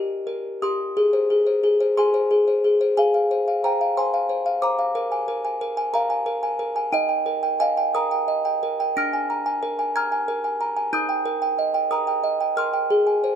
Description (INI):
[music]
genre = classical, lullaby for music box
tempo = 60 BPM (dotted quarters)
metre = 6/8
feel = rubato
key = Eb major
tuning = A4 = 441 Hz
[part]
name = music box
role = solo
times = 0.0-13.4 s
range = D4 to Bb6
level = -20 LUFS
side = equal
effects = none
[sound]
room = light reverb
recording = lossy compression artefacts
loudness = -20 LUFS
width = side -8 dB against mid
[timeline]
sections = 1.0-13.4 A section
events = none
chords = 0.0 Eb; 1.0 Ab; 3.0 Fm/Ab; 5.0 Bb7; 6.9 Eb; 9.0 Bb7/D; 10.9 Eb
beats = | 0.96 1.97 | 2.97 3.97 | 4.95 5.94 | 6.93 7.94 | 8.97 9.95 | 10.93 11.90 | 12.90